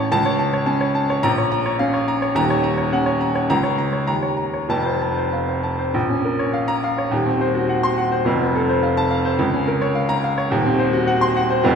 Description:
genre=classical, virtuoso piano study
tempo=105 BPM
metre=2/4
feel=rubato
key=Bb minor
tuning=A4 = 441 Hz
part: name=clear baby grand piano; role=solo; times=0.0-11.8 s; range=Eb1 to C6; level=-17 LUFS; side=equal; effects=none
room=wet concert hall reverb, RT60 2.1 s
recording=recorded in a church or concert hall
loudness=-17 LUFS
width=side -6 dB against mid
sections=0.0-5.9 A section; 5.9-11.8 B section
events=none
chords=0.1 A/C#; 1.2 Bbm; 2.4 Ebm7; 3.5 Bbm/Db; 4.1 Eb5; 4.7 F; 5.9 Bbm; 7.1 Cdim/Eb; 8.3 F; 9.4 Bbm/Db; 10.5 Cdim/Eb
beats=| 0.11 0.67 | 1.23 1.79 | 2.35 2.92 | 3.49 4.07 | 4.69 5.33 | 5.94 6.53 | 7.12 7.69 | 8.27 8.83 | 9.39 9.96 | 10.52 11.08 | 11.65

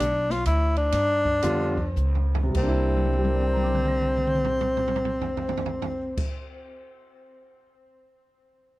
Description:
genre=jazz, small-group swing and bop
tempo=96-136 BPM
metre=3/4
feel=swing 66% on 8ths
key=C major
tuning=A4 = 440 Hz
part: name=breathy tenor saxophone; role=melody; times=0.0-6.2 s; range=C4 to F4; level=-26 LUFS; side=left 1 dB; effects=tape echo
part: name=upright bass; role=bass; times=0.0-6.2 s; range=B1 to G2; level=-26 LUFS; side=equal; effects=none
part: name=open jazz drum kit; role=drums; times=0.0-7.7 s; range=crash cymbal, hi-hat, kick drum, ride cymbal, snare drum, toms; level=-31 LUFS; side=right 1 dB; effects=none
part: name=warm concert grand piano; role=accompaniment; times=1.4-6.6 s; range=C3 to Bb6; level=-30 LUFS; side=right 1 dB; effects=none
room=little or no reverb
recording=dry, close 1970s-style studio recording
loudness=-22 LUFS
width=side -18 dB against mid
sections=0.0-2.6 A section; 2.6-6.3 B section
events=slowing down 0.0-2.6; drum fill 2.0-2.6, 2.9-6.1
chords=0.0 Asus4 (rootless); 0.9 G7; 2.6 C9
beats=0.00 0.45 | 0.92 1.42 1.96 | 2.55 3.17 3.79 | 4.42 5.04 5.66

